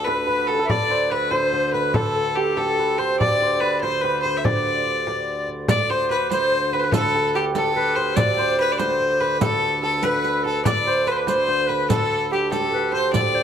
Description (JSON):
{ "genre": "medieval dance", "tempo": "96 BPM (dotted quarters)", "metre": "6/8", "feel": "straight", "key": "unclear", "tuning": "A4 = 439 Hz", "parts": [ { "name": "bright fiddle", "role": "melody", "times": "0.0-13.4 s", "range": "G4 to E5", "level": "-23 LUFS", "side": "left 2 dB", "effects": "none" }, { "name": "hammered dulcimer", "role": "second line", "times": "0.0-13.4 s", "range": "G4 to D5", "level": "-24 LUFS", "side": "right 7 dB", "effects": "none" }, { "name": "pedal harmonium", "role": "drone", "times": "0.0-13.4 s", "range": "D2", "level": "-30 LUFS", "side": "equal", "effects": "stereo widening" }, { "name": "bright reedy tenor recorder", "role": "second line", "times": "0.1-13.4 s", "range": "G4 to E5", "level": "-25 LUFS", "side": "left 5 dB", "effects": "none" }, { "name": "frame drum", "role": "percussion", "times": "0.1-13.3 s", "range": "none", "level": "-25 LUFS", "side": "left 1 dB", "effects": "none" }, { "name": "riq", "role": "percussion", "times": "5.7-13.3 s", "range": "none", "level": "-29 LUFS", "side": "right 9 dB", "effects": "none" } ], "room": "moderate spring reverb, RT60 2.2 s", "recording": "none", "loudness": "-18 LUFS", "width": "side -8 dB against mid", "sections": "0.0-5.7 A section; 5.7-13.4 A section", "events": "none", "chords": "none" }